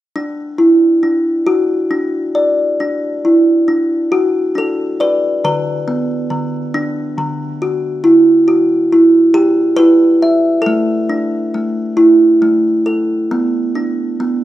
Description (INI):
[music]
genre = children's music, lullaby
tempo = 46 BPM (dotted quarters)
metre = 6/8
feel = rubato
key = D major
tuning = A4 = 442 Hz
[part]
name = kalimba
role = solo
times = 0.2-14.4 s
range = D3 to E5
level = -11 LUFS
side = equal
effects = none
[sound]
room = light reverb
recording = minimal, uncompressed stereo recording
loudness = -11 LUFS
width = side -14 dB against mid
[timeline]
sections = 0.1-2.8 A section; 2.8-14.4 B section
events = none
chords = 0.1 Dadd9; 5.5 Bm/D; 8.0 Emadd9; 10.7 D5/A; 12.0 A5; 13.3 Bm